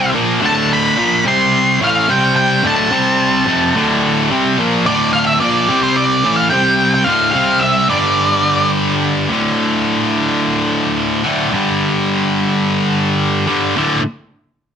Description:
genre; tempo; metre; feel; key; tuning
rock; 108 BPM; 4/4; straight; D minor; A4 = 440 Hz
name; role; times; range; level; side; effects
octave-fuzz lead guitar; melody; 0.0-8.7 s; C5 to C6; -15 LUFS; right 1 dB; distortion, digital delay
high-gain distorted guitar; riff; 0.0-14.0 s; D2 to C4; -14 LUFS; equal; distortion
room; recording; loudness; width
light reverb; dense, heavily limited modern master; -12 LUFS; side -8 dB against mid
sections
0.0-9.3 A section; 9.3-13.8 B section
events
none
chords
0.0 Dm; 1.3 C5; 1.8 Fmaj7/A; 2.1 C5; 2.6 D5; 2.9 C5; 3.5 Dm; 5.7 C5; 6.2 Dm; 6.5 C5; 7.1 Dm; 7.4 C5; 7.9 G5; 9.3 D5; 11.5 G5; 13.8 D5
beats
| 0.44 0.99 1.54 2.10 | 2.65 3.20 3.75 4.31 | 4.86 5.42 5.97 6.53 | 7.08 7.63 8.19 8.75 | 9.30 9.86 10.42 10.98 | 11.54 12.09 12.65 13.21 | 13.76

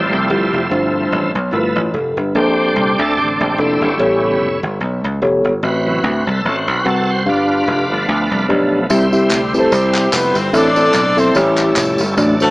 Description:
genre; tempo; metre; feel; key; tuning
uptempo gospel; 146 BPM; 4/4; swing 56% on 8ths; C major; A4 = 440 Hz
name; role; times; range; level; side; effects
bright tonewheel organ; sustained chords; 0.0-12.5 s; C3 to C5; -19 LUFS; right 1 dB; overdrive, chorus vibrato, slow rotary speaker
dry thumbed slap bass; bass; 0.0-12.5 s; F1 to D2; -19 LUFS; equal; none
mellow tine electric piano; accompaniment; 0.3-12.5 s; G2 to F#5; -16 LUFS; equal; medium stereo tremolo
tambourine and handclaps; percussion; 8.9-12.5 s; none; -22 LUFS; equal; none
dark horn section; melody; 9.3-12.5 s; G3 to D5; -16 LUFS; equal; none
room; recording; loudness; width
light reverb; small speaker sound; -13 LUFS; side -22 dB against mid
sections
0.0-8.9 A section; 8.9-12.5 B section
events
tonewheel organ solo 0.0-8.9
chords
0.0 Fmaj9; 0.7 G7sus4; 1.5 G13; 2.4 Bbmaj9; 4.0 A9; 5.6 D13/A; 7.3 G7; 8.9 C; 10.5 Am; 11.4 A7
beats
0.30 | 0.71 1.12 1.53 1.94 | 2.35 2.76 3.17 3.58 | 3.99 4.40 4.81 5.22 | 5.63 6.04 6.45 6.86 | 7.27 7.68 8.09 8.49 | 8.90 9.31 9.72 10.13 | 10.54 10.95 11.36 11.76 | 12.17

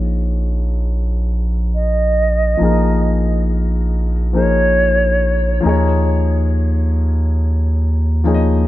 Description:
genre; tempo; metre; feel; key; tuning
R&B; 69 BPM; 4/4; swing 63% on 16ths; Bb minor; A4 = 440 Hz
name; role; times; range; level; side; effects
warm baby grand piano; accompaniment; 0.0-8.7 s; F3 to Eb5; -20 LUFS; left 4 dB; low-pass filter
round analog bass; bass; 0.0-8.7 s; Bb1 to Eb2; -16 LUFS; equal; none
silver concert flute; melody; 1.7-5.6 s; Db5 to Eb5; -19 LUFS; right 2 dB; low-pass filter, tape echo
room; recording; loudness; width
light reverb; none; -14 LUFS; side -15 dB against mid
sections
0.0-8.7 A section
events
filter sweep 0.0-8.7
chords
0.0 Bbm7; 5.6 Ebsus2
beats
0.85 1.72 | 2.59 3.46 4.33 5.20 | 6.07 6.94 7.81

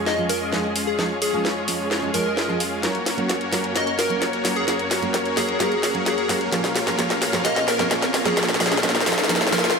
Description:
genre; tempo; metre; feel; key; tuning
EDM, festival progressive house; 130 BPM; 4/4; straight; Bb minor; A4 = 443 Hz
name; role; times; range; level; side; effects
fingerpicked steel-string acoustic guitar; accompaniment; 0.0-9.7 s; F3 to Bb4; -28 LUFS; right 4 dB; ping-pong delay
muted studio string section; sustained chords; 0.0-9.7 s; F2 to F5; -31 LUFS; left 3 dB; none
supersaw chords; riff; 0.0-9.7 s; Ab3 to F5; -26 LUFS; equal; low-pass filter, ping-pong delay
plucky unison lead; melody; 0.1-9.8 s; Ab4 to Eb5; -26 LUFS; left 1 dB; ping-pong delay
house drum kit; drums; 0.1-9.8 s; hi-hat, snare drum; -23 LUFS; left 1 dB; none
riser and swell; sound effects; 5.5-9.8 s; none; -30 LUFS; right 1 dB; none
room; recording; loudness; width
moderate lush hall reverb, RT60 2.0 s; none; -19 LUFS; side -5 dB against mid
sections
0.0-9.8 A section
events
build-up 0.0-9.8; drum fill 0.0-9.8; riser 5.5-9.8; swell 9.3-9.8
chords
0.0 Db/F; 2.8 Gb; 6.5 Bbm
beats
0.06 0.53 | 0.99 1.45 1.91 2.37 | 2.83 3.29 3.76 4.22 | 4.68 5.14 5.60 6.06 | 6.53 6.99 7.45 7.91 | 8.37 8.83 9.29 9.76

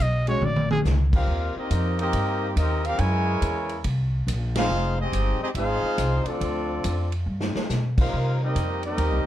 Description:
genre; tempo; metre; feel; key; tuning
jazz, big band swing; 140 BPM; 4/4; swing 65% on 8ths; Eb major; A4 = 439 Hz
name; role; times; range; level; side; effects
warm trumpet; melody; 0.0-0.8 s; Ab4 to Eb5; -27 LUFS; right 1 dB; plate reverb
upright bass; bass; 0.0-9.2 s; F1 to C3; -25 LUFS; equal; none
swinging big-band drum kit; drums; 0.3-9.1 s; crash cymbal, hi-hat, kick drum, ride cymbal, snare drum, toms; -28 LUFS; equal; none
warm trumpet section; melody; 1.1-9.3 s; C4 to Ab5; -27 LUFS; equal; plate reverb
muted trombone section; second line; 1.1-9.3 s; Db3 to F4; -32 LUFS; equal; none
room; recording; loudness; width
light reverb; dark, warm production; -22 LUFS; side -12 dB against mid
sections
0.0-1.3 A section; 1.3-9.3 B section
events
trumpet solo 0.0-1.3; drum fill 0.4-0.9, 7.3-7.7; band accent 4.5, 7.9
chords
0.4 Bbm; 1.3 Eb69; 3.0 Gb9; 4.7 Fm9; 6.4 Dm7; 7.3 G7#9; 8.1 Cm7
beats
0.00 0.42 0.85 | 1.28 1.71 2.13 2.56 | 2.99 3.42 3.84 4.27 | 4.70 5.12 5.55 5.98 | 6.41 6.84 7.26 7.69 | 8.12 8.55 8.98

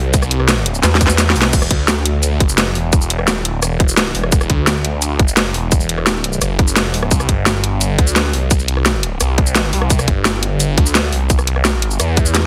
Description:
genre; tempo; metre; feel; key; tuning
dark technical drum and bass; 172 BPM; 4/4; straight; unclear; A4 = 436 Hz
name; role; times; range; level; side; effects
phased detuned saw bass; bass; 0.0-12.5 s; E1 to E2; -20 LUFS; equal; phaser, tube saturation
drum and bass drum kit; drums; 0.1-12.4 s; crash cymbal, hi-hat, rim click, shaker, snare drum; -19 LUFS; equal; overdrive
electronic kick drum; drums; 0.1-12.2 s; none; -16 LUFS; equal; overdrive
room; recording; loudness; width
light reverb, digital ambience; heavily compressed radio sound; -15 LUFS; mono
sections
0.0-12.5 A section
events
drum fill 0.8-1.5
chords
none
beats
| 0.14 0.48 0.83 1.18 | 1.53 1.88 2.23 2.58 | 2.93 3.28 3.62 3.97 | 4.32 4.67 5.02 5.37 | 5.72 6.07 6.42 6.76 | 7.11 7.46 7.81 8.16 | 8.51 8.86 9.21 9.55 | 9.90 10.25 10.60 10.95 | 11.30 11.65 12.00 12.35

